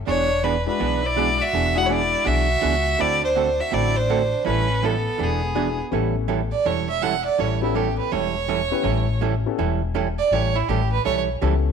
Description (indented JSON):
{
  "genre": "country, western swing",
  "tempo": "164 BPM",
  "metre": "4/4",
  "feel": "swing 65% on 8ths",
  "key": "A mixolydian",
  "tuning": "A4 = 441 Hz",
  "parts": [
    { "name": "clear fiddle", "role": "melody", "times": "0.1-5.8 s", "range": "G#4 to F#5", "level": "-22 LUFS", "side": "equal", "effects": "none" },
    { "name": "clear fiddle", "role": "second line", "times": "0.1-11.2 s", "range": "B3 to F#5", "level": "-26 LUFS", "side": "right 7 dB", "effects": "none" },
    { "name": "archtop guitar, miked and amplified", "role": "accompaniment", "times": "0.1-11.5 s", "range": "D3 to A4", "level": "-26 LUFS", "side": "right 10 dB", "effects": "none" },
    { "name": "upright bass", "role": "bass", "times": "0.1-11.7 s", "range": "E1 to D2", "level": "-25 LUFS", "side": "left 3 dB", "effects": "none" },
    { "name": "warm upright piano", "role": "accompaniment", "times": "0.7-2.2, 5.5-11.7 s", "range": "G#3 to B4", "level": "-28 LUFS", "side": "left 13 dB", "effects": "none" }
  ],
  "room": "moderate echo chamber reverb, RT60 1.4 s",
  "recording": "1960s-style stereo with parts hard left and right",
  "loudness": "-19 LUFS",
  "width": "side -6 dB against mid",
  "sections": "0.0-5.9 A section; 5.9-11.7 B section",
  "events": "fiddle solo 5.9-11.7",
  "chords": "0.1 E9; 3.0 D7; 4.5 A9; 5.2 E9; 5.9 A9"
}